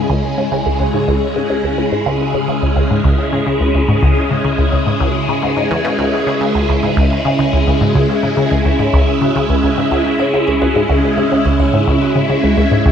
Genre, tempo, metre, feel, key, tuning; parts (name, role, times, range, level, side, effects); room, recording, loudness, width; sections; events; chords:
ambient, sequencer-driven space music; 107 BPM; 4/4; straight; C# minor; A4 = 440 Hz
phased string machine; sustained chords; 0.0-12.9 s; C#3 to G#4; -17 LUFS; equal; ensemble chorus, phaser
resonant blip pluck; riff; 0.0-12.9 s; C#2 to C#3; -15 LUFS; equal; phaser, tape echo
vibraphone with medium mallets; arpeggios; 0.2-12.9 s; G#3 to C#5; -21 LUFS; right 1 dB; auto-pan, tape echo
moderate plate reverb, RT60 2.5 s; -12 LUFS; side -8 dB against mid
0.0-12.9 A section
fade-in on vibraphone 0.0-12.9
0.0 C#m